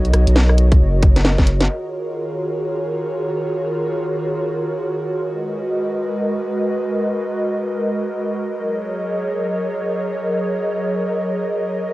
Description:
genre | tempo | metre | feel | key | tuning
UK garage, two-step garage | free time | none | none | Eb minor | A4 = 440 Hz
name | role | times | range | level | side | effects
airy breathy pad | sustained chords | 0.0-11.9 s | Eb3 to Eb5 | -20 LUFS | equal | chorus, sidechain pumping
saturated sub bass | bass | 0.0-1.7 s | F#1 to B1 | -14 LUFS | equal | sidechain pumping
garage drum kit | drums | 0.0-1.7 s | hi-hat, rim click, snare drum | -19 LUFS | equal | low-pass filter on hats, low-pass filter on snare
electronic kick drum | drums | 0.7-1.5 s | none | -14 LUFS | equal | none
room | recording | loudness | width
moderate booth ambience, RT60 0.2 s | home recording on cassette | -18 LUFS | side -18 dB against mid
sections
0.0-1.7 A section; 1.7-11.9 B section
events
drum fill 1.4-1.7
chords
0.0 Bmaj7; 1.7 Ebm11; 5.2 Abm7; 8.6 Gb69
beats
free time

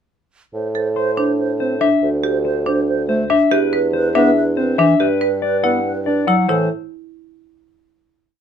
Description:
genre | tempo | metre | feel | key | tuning
classical, minimalist pattern music | 282 BPM (eighths) | 7/8 | straight | A dorian | A4 = 438 Hz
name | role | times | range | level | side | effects
bright wooden-headed alto flute | second line | 0.5-6.2 s | B4 to C5 | -25 LUFS | right 5 dB | none
mellow bassoon | bass | 0.5-6.7 s | D2 to A2 | -21 LUFS | right 1 dB | none
marimba with medium hard mallets | arpeggios | 0.8-6.7 s | D4 to B4 | -20 LUFS | right 3 dB | none
mellow electric guitar | melody | 1.0-6.7 s | B4 to F#5 | -19 LUFS | left 8 dB | none
mellow bass clarinet | accompaniment | 1.6-6.7 s | E3 to D4 | -20 LUFS | right 1 dB | none
room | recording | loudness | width
light reverb | minimal, uncompressed stereo recording | -15 LUFS | side -8 dB against mid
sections
0.5-6.5 A section; 6.5-8.0 final chord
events
none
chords
0.5 Am; 2.0 D7sus4; 3.5 Cmaj7/E; 5.0 Gmaj7; 6.5 A5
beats
| 0.54 0.75 0.96 1.17 1.39 1.60 1.81 | 2.02 2.24 2.45 2.66 2.88 3.09 3.30 | 3.51 3.73 3.94 4.15 4.37 4.58 4.79 | 5.00 5.22 5.43 5.64 5.86 6.07 6.28 | 6.49

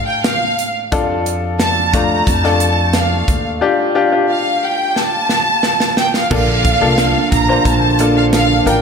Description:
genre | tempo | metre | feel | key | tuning
piano-driven pop | 89 BPM | 4/4 | straight | Bb major | A4 = 440 Hz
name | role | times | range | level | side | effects
rich studio violin section | melody | 0.0-8.8 s | F5 to Bb5 | -17 LUFS | right 1 dB | none
bright upright piano | accompaniment | 0.0-8.8 s | Bb2 to C5 | -18 LUFS | left 4 dB | slapback echo
upright bass | bass | 0.0-8.8 s | A1 to A2 | -19 LUFS | equal | none
modern studio drum kit | drums | 0.2-8.8 s | crash cymbal, hi-hat, kick drum, snare drum | -19 LUFS | equal | none
dark French horn section | second line | 6.3-8.8 s | D3 to D4 | -19 LUFS | right 5 dB | slapback echo
mellow tonewheel organ | sustained chords | 6.3-8.8 s | F3 to D4 | -27 LUFS | equal | none
direct-recorded clean electric guitar | riff | 6.3-8.8 s | Bb2 to A4 | -23 LUFS | right 6 dB | analog chorus, slapback echo
room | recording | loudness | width
wet scoring stage reverb, RT60 1.9 s, small room ambience | big arena sound | -12 LUFS | side -6 dB against mid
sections
0.0-6.3 A section; 6.3-8.8 B section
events
drum fill 5.0-6.3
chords
0.0 F6; 6.3 Bbmaj7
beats
0.25 | 0.92 1.59 2.27 2.94 | 3.62 4.29 4.96 5.64 | 6.31 6.99 7.66 8.33

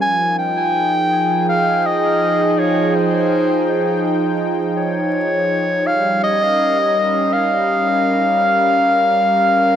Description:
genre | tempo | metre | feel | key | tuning
ambient | 82 BPM | 4/4 | swing 54% on 16ths | F minor | A4 = 440 Hz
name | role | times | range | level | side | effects
mellow clarinet | melody | 0.0-9.8 s | C5 to Ab5 | -16 LUFS | left 1 dB | dub echo
warm analog pad | sustained chords | 0.0-9.8 s | F3 to G5 | -18 LUFS | right 1 dB | chorus
room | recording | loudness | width
moderate plate reverb, RT60 3.3 s | echo-heavy mix, vinyl crackle | -14 LUFS | side -9 dB against mid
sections
0.0-9.8 A section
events
none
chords
0.0 Fm9; 5.9 Gm7b5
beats
| 0.01 0.74 1.48 2.21 | 2.94 3.67 4.40 5.13 | 5.87 6.60 7.33 8.06 | 8.79 9.52

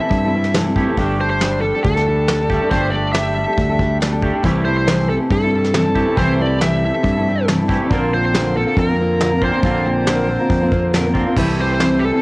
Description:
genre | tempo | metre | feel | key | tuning
folk rock and heartland rock | 139 BPM | 4/4 | straight | C mixolydian | A4 = 440 Hz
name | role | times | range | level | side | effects
bluesy overdriven lead guitar | melody | 0.0-12.2 s | G4 to E5 | -21 LUFS | equal | distortion, analog delay
picked steel-string acoustic guitar | accompaniment | 0.0-12.2 s | Bb2 to Bb4 | -21 LUFS | left 1 dB | cassette tape
twangy electric guitar | riff | 0.0-12.2 s | Bb2 to G4 | -23 LUFS | right 2 dB | analog chorus, cassette tape
picked electric bass | bass | 0.1-12.1 s | G1 to G2 | -20 LUFS | equal | none
soft brush drum kit | drums | 0.1-11.9 s | crash cymbal, hi-hat, kick drum, snare drum | -21 LUFS | equal | cassette tape
bright tonewheel organ | sustained chords | 11.4-12.2 s | C4 to A4 | -33 LUFS | equal | none
room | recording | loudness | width
moderate booth ambience, RT60 0.2 s | home recording on cassette | -14 LUFS | side -24 dB against mid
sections
0.0-11.4 A section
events
none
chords
0.0 C6; 1.0 Gsus2; 4.5 C6; 7.9 Bbadd9; 11.4 C6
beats
0.13 0.56 | 0.99 1.43 1.86 2.29 | 2.72 3.16 3.59 4.02 | 4.45 4.89 5.32 5.75 | 6.18 6.62 7.05 7.48 | 7.92 8.35 8.78 9.21 | 9.65 10.08 10.51 10.94 | 11.38 11.81

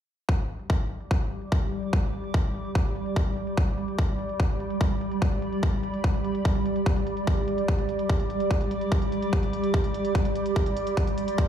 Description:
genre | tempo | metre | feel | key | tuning
psychedelic trance | 146 BPM | 4/4 | straight | G major | A4 = 440 Hz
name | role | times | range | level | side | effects
swarming drone | sustained chords | 0.8-11.5 s | G3 | -32 LUFS | right 3 dB | built-in reverb, sidechain pumping
electronic hi-hat | drums | 0.3-11.5 s | none | -53 LUFS | equal | low-pass filter on hats, low-pass filter on room
electronic kick drum | drums | 0.3-11.5 s | none | -25 LUFS | equal | none
warbly tape-like pad | texture | 0.9-11.5 s | G3 to D6 | -30 LUFS | right 1 dB | chorus, built-in reverb, phaser, sidechain pumping
room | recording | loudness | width
light reverb | played on a big sound system in a bare room, large studio reverb | -24 LUFS | side -9 dB against mid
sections
0.3-11.5 A section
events
filter sweep on drum 0.3-11.5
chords
0.3 G5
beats
| 0.29 0.70 1.11 1.52 | 1.93 2.34 2.75 3.16 | 3.57 3.98 4.40 4.81 | 5.22 5.63 6.04 6.45 | 6.86 7.27 7.68 8.10 | 8.51 8.92 9.33 9.74 | 10.15 10.56 10.97 11.38

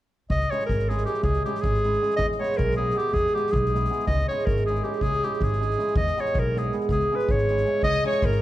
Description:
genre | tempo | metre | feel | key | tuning
balkan folk, Balkan wedding band | 318 BPM (eighths) | 5/8 | straight | C# dorian sharp4 | A4 = 440 Hz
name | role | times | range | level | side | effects
bright clarinet | melody | 0.3-8.4 s | G4 to D#5 | -26 LUFS | equal | none
upright bass | bass | 0.3-8.4 s | G#1 to E2 | -27 LUFS | equal | none
soft-mallet drum kit | percussion | 0.3-8.4 s | kick drum, snare drum | -30 LUFS | equal | none
cimbalom | accompaniment | 0.5-8.4 s | G#3 to G#4 | -27 LUFS | right 2 dB | none
rich violin | second line | 7.9-8.4 s | A#5 to D#6 | -36 LUFS | left 5 dB | none
room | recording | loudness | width
moderate recital hall reverb, RT60 1.8 s | dark, warm production | -21 LUFS | side -14 dB against mid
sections
0.3-7.8 A section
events
none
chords
0.3 C#m; 2.2 E; 4.1 C#m; 6.0 E; 6.9 C#m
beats
| 0.30 0.49 0.68 0.86 1.05 | 1.24 1.43 1.62 1.81 2.00 | 2.19 2.38 2.56 2.75 2.94 | 3.13 3.32 3.51 3.70 3.89 | 4.08 4.26 4.45 4.64 4.83 | 5.02 5.21 5.40 5.58 5.77 | 5.96 6.15 6.34 6.53 6.71 | 6.90 7.09 7.28 7.47 7.66 | 7.84 8.03 8.22 8.40

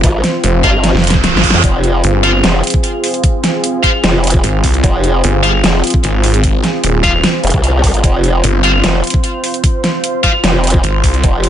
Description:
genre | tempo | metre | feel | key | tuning
heavy wobble dubstep | 150 BPM | 4/4 | half-time | F minor | A4 = 437 Hz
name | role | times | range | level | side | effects
supersaw pad | sustained chords | 0.0-11.5 s | C4 to C5 | -18 LUFS | right 1 dB | sidechain pumping, low-pass filter
formant-sweep wobble bass | bass | 0.0-11.5 s | F1 to F2 | -13 LUFS | equal | chorus, overdrive
snarling distorted saw bass | bass | 0.0-11.2 s | Eb1 to C2 | -14 LUFS | equal | distortion, overdrive
dubstep drum kit | drums | 0.0-11.5 s | hi-hat, snare drum | -16 LUFS | right 1 dB | none
electronic kick drum | drums | 0.0-11.3 s | none | -14 LUFS | equal | none
tight distorted guitar | stabs | 0.6-10.3 s | F4 to F5 | -17 LUFS | left 2 dB | distortion, digital delay
reverse cymbal | sound effects | 1.0-1.6 s | none | -17 LUFS | right 6 dB | none
room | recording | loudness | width
little or no reverb | nothing above 10.5 kHz | -10 LUFS | side -10 dB against mid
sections
0.0-11.5 A section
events
drum fill 0.8-1.6; reverse cymbal 1.0-1.6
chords
0.0 Fm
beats
| 0.04 0.44 0.84 1.24 | 1.64 2.04 2.44 2.84 | 3.24 3.64 4.04 4.44 | 4.84 5.24 5.64 6.04 | 6.44 6.84 7.24 7.64 | 8.04 8.44 8.84 9.24 | 9.64 10.04 10.44 10.84 | 11.24

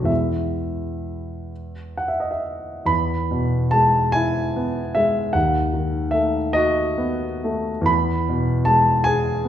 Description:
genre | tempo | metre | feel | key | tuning
classical, romantic nocturne for solo piano | 42-53 BPM (dotted quarters) | 6/8 | rubato | E major | A4 = 440 Hz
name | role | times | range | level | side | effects
warm concert grand piano | solo | 0.0-9.5 s | B1 to B5 | -19 LUFS | equal | none
room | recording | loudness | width
wet large studio reverb, RT60 1.4 s | heard from further back in the room | -18 LUFS | side -10 dB against mid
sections
0.0-2.9 A section; 2.9-9.5 B section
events
none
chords
0.1 E; 5.3 B7/D#; 7.9 E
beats
| 0.09 1.50 | 2.89 4.14 | 5.35 6.54 | 7.88 9.05

